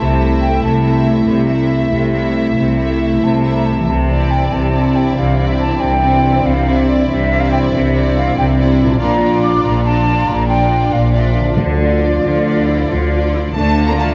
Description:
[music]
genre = cinematic, heroic adventure film score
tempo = 93 BPM (dotted quarters)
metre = 12/8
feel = straight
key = unclear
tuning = A4 = 443 Hz
[part]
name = rich studio violin section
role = melody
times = 0.0-14.1 s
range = D5 to Bb5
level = -28 LUFS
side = equal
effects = none
[part]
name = concert flute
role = second line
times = 0.0-14.1 s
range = D5 to D6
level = -23 LUFS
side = equal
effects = none
[part]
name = warm symphonic violin section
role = second line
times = 0.0-14.1 s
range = E4 to Bb5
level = -28 LUFS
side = equal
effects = none
[part]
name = warm symphonic viola section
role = accompaniment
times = 0.0-14.1 s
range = A3 to F4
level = -23 LUFS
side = equal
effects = none
[part]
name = dark French horn section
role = sustained chords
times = 0.0-14.1 s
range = E3 to E4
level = -25 LUFS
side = equal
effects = none
[part]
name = concert harp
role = arpeggios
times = 0.0-14.1 s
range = Bb2 to D5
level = -28 LUFS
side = equal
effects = none
[part]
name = clear symphonic cello section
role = bass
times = 0.0-14.1 s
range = Bb2 to Bb3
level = -21 LUFS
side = equal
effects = none
[part]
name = rich symphonic double bass section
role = bass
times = 0.0-14.1 s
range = Bb1 to D2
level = -20 LUFS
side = equal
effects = none
[part]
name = timpani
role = percussion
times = 11.6-12.2 s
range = D3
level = -25 LUFS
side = equal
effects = none
[sound]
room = moderate scoring stage reverb, RT60 1.7 s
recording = dark, warm production, nothing above 7.7 kHz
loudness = -14 LUFS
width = mono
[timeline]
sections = 0.0-14.1 A section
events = none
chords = 0.0 Am/C; 3.9 Cadd9; 9.0 Bb; 11.6 Dm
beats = 0.00 0.63 | 1.27 1.92 2.57 3.22 | 3.87 4.52 5.16 5.80 | 6.45 7.08 7.72 8.37 | 9.00 9.64 10.28 10.92 | 11.57 12.24 12.90 13.56

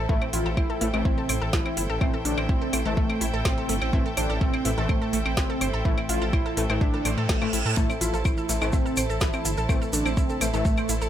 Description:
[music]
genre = melodic techno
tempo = 125 BPM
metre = 4/4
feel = straight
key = A minor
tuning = A4 = 442 Hz
[part]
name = rich chamber string section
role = sustained chords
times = 0.0-11.1 s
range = E4 to A5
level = -34 LUFS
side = right 1 dB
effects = sidechain pumping
[part]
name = analog pluck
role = arpeggios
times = 0.0-11.1 s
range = A3 to C6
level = -33 LUFS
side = right 2 dB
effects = chorus, vintage 12-bit sampler grit, sidechain pumping, tape echo
[part]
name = dark detuned saw bass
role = bass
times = 0.0-11.1 s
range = G1 to A2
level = -29 LUFS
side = equal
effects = sidechain pumping
[part]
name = wide unison lead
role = melody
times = 0.1-10.9 s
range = A3 to F4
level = -30 LUFS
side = right 1 dB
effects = sidechain pumping, tape echo
[part]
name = synth brass stab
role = stabs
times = 0.1-11.1 s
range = A2 to A3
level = -32 LUFS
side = left 3 dB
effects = chorus, cassette tape, sidechain pumping, tape echo
[part]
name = electronic kick drum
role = drums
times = 0.1-10.8 s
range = none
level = -25 LUFS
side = equal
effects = small room ambience
[part]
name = deep house drum kit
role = drums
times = 0.2-11.0 s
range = claves, hi-hat, snare drum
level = -30 LUFS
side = left 1 dB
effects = small room ambience
[part]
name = reverse cymbal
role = sound effects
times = 7.0-7.8 s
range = none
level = -33 LUFS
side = right 6 dB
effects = none
[part]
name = tube shaker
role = percussion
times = 7.8-11.1 s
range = none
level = -35 LUFS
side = right 1 dB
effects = none
[sound]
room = light reverb, digital ambience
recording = none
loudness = -22 LUFS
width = side -10 dB against mid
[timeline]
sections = 0.0-11.1 A section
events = reverse cymbal 7.0-7.8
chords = 0.0 Am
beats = | 0.09 0.57 1.05 1.53 | 2.01 2.49 2.97 3.45 | 3.93 4.41 4.89 5.37 | 5.85 6.33 6.81 7.29 | 7.77 8.25 8.73 9.21 | 9.69 10.17 10.65

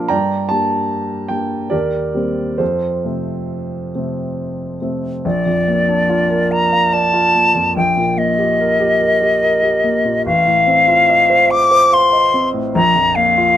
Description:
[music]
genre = classical, romantic duo for flute and grand piano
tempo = 66-77 BPM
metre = 3/4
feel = rubato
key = Bb major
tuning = A4 = 440 Hz
[part]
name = dark baby grand piano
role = accompaniment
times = 0.0-13.6 s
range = A1 to Bb5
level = -18 LUFS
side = right 1 dB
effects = none
[part]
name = silver concert flute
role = melody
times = 5.3-13.6 s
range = D5 to D6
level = -12 LUFS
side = left 2 dB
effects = none
[sound]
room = light reverb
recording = none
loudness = -13 LUFS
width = side -11 dB against mid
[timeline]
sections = 0.0-5.2 A section; 5.2-13.6 B section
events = none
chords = 0.1 Gm; 1.7 Cm7/Eb; 2.6 F; 5.2 Bb; 7.8 Eb/Bb; 10.3 F7/A; 12.8 Bb5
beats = | 0.12 0.91 1.73 | 2.60 3.50 4.37 | 5.24 6.09 6.93 | 7.77 8.59 9.42 | 10.26 11.10 11.93 | 12.75

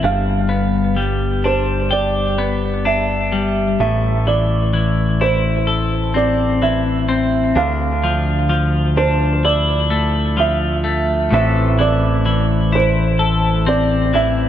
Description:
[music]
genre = post-rock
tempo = 64 BPM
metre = 4/4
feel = straight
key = A minor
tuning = A4 = 440 Hz
[part]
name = felt-muted upright piano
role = arpeggios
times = 0.0-14.5 s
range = C5 to F5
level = -21 LUFS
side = right 5 dB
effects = analog delay
[part]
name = twelve-string electric guitar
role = arpeggios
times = 0.0-14.5 s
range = G2 to A4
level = -18 LUFS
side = left 4 dB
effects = analog delay
[part]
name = growling fingered electric bass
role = bass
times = 0.0-14.5 s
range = G1 to D2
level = -19 LUFS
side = equal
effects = overdrive
[part]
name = pedal steel guitar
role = sustained chords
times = 11.3-14.5 s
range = E3 to E5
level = -22 LUFS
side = right 1 dB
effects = lush chorus
[sound]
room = light reverb, digital ambience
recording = none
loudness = -14 LUFS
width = side -10 dB against mid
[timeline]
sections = 0.0-3.8 A section; 3.8-14.5 B section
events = none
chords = 0.0 G; 3.8 Am; 7.6 Dmadd9; 11.3 Am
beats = | 0.04 0.98 1.92 2.86 | 3.80 4.74 5.68 6.62 | 7.56 8.50 9.44 10.38 | 11.32 12.26 13.20 14.14

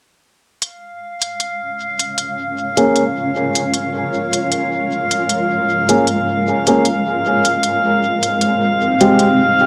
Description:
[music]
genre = ambient dub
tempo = 77 BPM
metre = 4/4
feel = straight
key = Bb dorian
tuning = A4 = 438 Hz
[part]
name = granular cloud pad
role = sustained chords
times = 2.0-9.7 s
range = Ab3 to Db5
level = -22 LUFS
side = equal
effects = built-in reverb
[part]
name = electronic hi-hat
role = drums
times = 0.6-9.4 s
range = none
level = -22 LUFS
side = equal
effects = small room ambience, dub echo
[part]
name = drifting glass-harmonics texture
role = texture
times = 0.8-9.7 s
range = F5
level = -21 LUFS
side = equal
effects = chorus, built-in reverb
[part]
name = warm upright piano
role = stabs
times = 2.8-9.2 s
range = Ab3 to Ab4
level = -19 LUFS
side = equal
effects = low-pass filter, dub echo
[sound]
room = light reverb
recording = echo-heavy mix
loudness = -17 LUFS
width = mono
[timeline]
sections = 0.6-9.7 A section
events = fade-in on ambient pad 0.6-9.7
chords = 0.6 Bbm7; 6.9 Abmaj7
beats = | 0.62 1.40 2.18 2.96 | 3.74 4.52 5.29 6.08 | 6.85 7.63 8.41 9.19

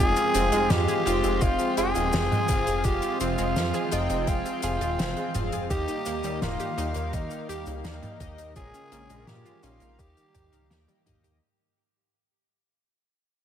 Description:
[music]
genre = synthwave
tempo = 84 BPM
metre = 4/4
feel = straight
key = F minor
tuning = A4 = 439 Hz
[part]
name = growling tenor saxophone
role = melody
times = 0.0-11.1 s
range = Eb4 to Ab4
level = -28 LUFS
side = equal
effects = ping-pong delay
[part]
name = analog string pad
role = sustained chords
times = 0.0-11.4 s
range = Db3 to C4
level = -34 LUFS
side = right 2 dB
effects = ensemble chorus, sidechain pumping
[part]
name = analog pluck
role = arpeggios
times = 0.0-11.4 s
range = Eb3 to Ab4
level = -34 LUFS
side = right 3 dB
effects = chorus, tape echo
[part]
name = chorused polysynth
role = stabs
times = 0.0-11.4 s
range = Ab3 to G5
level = -33 LUFS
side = left 3 dB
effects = none
[part]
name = chorused synth bass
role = bass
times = 0.0-11.4 s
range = Eb1 to Bb2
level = -31 LUFS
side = equal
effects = none
[part]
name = soft-mallet drum kit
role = drums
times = 0.2-11.4 s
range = cabasa, hi-hat, snare drum, toms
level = -32 LUFS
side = left 1 dB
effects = none
[part]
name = electronic kick drum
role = drums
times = 1.4-11.2 s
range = none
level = -27 LUFS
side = equal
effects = none
[sound]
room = light reverb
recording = none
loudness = -23 LUFS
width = side -9 dB against mid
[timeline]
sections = 0.0-11.4 A section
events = fade-out 0.0-11.4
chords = 0.0 Fm; 5.7 Eb; 8.6 Bbm7; 10.0 Eb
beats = 0.70 1.42 2.13 | 2.85 3.56 4.28 4.99 | 5.70 6.42 7.13 7.85 | 8.56 9.28 9.99 10.70

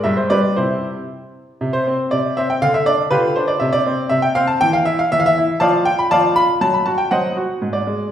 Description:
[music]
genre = classical-period piano sonatina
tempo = 120 BPM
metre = 2/4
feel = straight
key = unclear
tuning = A4 = 440 Hz
[part]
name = bright baby grand piano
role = solo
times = 0.0-8.1 s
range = G2 to B5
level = -15 LUFS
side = equal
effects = none
[sound]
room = wet recital hall reverb, RT60 1.4 s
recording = heard from further back in the room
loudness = -15 LUFS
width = side -10 dB against mid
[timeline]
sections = 0.0-1.6 A section; 1.6-8.1 A section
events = none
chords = 0.1 G; 0.6 C; 1.6 N.C.; 2.6 G5/D; 3.6 N.C.; 5.6 Dm/F; 6.6 F#dim7; 7.6 N.C.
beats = 0.05 | 0.57 1.09 | 1.61 2.11 | 2.62 3.12 | 3.62 4.12 | 4.62 5.11 | 5.61 6.11 | 6.60 7.10 | 7.60 8.11

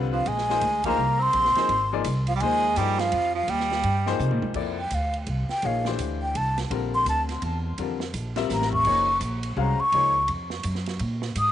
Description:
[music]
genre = modal jazz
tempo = 168 BPM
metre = 3/4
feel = swing 63% on 8ths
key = Bb lydian from 4.6 s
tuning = A4 = 440 Hz
[part]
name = clear concert grand piano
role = accompaniment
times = 0.0-10.1 s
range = D3 to F5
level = -30 LUFS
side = left 11 dB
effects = none
[part]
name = upright bass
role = bass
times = 0.0-11.5 s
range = Gb1 to C3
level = -28 LUFS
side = right 1 dB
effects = transformer saturation
[part]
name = breathy mellow concert flute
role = melody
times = 0.1-11.5 s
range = F5 to Eb6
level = -24 LUFS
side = equal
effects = tape echo
[part]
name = breathy tenor saxophone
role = second line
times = 0.1-4.2 s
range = F3 to C4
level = -30 LUFS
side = right 12 dB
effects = tape echo
[part]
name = vintage drum kit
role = drums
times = 0.3-11.5 s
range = crash cymbal, hi-hat, kick drum, ride cymbal, snare drum, toms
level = -36 LUFS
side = right 6 dB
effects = none
[sound]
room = light reverb, small room ambience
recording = 1960s-style stereo with parts hard left and right, nothing above 10.3 kHz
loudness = -22 LUFS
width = side -11 dB against mid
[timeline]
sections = 0.0-4.6 A section; 4.6-11.5 B section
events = band accent 0.8; drum fill 4.2-4.6, 8.5-8.9; flute solo 4.6-11.5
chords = 0.3 Bb13sus4; 4.6 Bbmaj9; 8.9 Gbmaj9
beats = | 0.27 0.62 0.98 | 1.34 1.70 2.05 | 2.41 2.77 3.13 | 3.48 3.84 4.20 | 4.56 4.92 5.27 | 5.63 5.99 6.35 | 6.71 7.06 7.42 | 7.78 8.14 8.49 | 8.85 9.21 9.57 | 9.93 10.28 10.64 | 11.00 11.36

